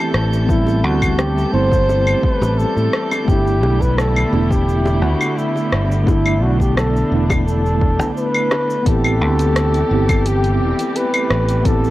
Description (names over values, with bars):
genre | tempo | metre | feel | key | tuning
sunset chillout | 86 BPM | 4/4 | straight | A minor | A4 = 439 Hz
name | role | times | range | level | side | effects
mellow tine electric piano | accompaniment | 0.0-11.9 s | G3 to G4 | -22 LUFS | equal | medium stereo tremolo, auto-pan
muted chamber string section | sustained chords | 0.0-11.9 s | D3 to A4 | -25 LUFS | equal | vintage 12-bit sampler grit, shimmer reverb
drifting glass-harmonics texture | texture | 0.0-8.9 s | G6 | -37 LUFS | right 4 dB | chorus, built-in reverb, shimmer reverb
fingered electric bass | bass | 0.1-11.9 s | E1 to A2 | -18 LUFS | equal | none
deep house drum kit | drums | 0.1-11.9 s | cabasa, claves, hi-hat, rim click | -23 LUFS | equal | none
dark flugelhorn | melody | 0.5-11.9 s | E4 to C5 | -21 LUFS | equal | ping-pong delay, shimmer reverb
electronic kick drum | drums | 0.5-11.8 s | none | -18 LUFS | equal | none
bongos | percussion | 0.7-8.7 s | none | -28 LUFS | equal | none
room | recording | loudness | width
moderate concert hall reverb, RT60 2.2 s | worn, warbling old tape, cassette tape, warbly pitch drift | -14 LUFS | side -16 dB against mid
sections
0.0-8.9 A section; 8.9-11.9 B section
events
filter sweep on tine electric piano 0.0-8.9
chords
0.0 Am7; 3.3 G69; 8.9 Am7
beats
| 0.49 1.19 1.89 2.58 | 3.28 3.98 4.68 5.37 | 6.07 6.77 7.47 8.16 | 8.86 9.56 10.26 10.96 | 11.65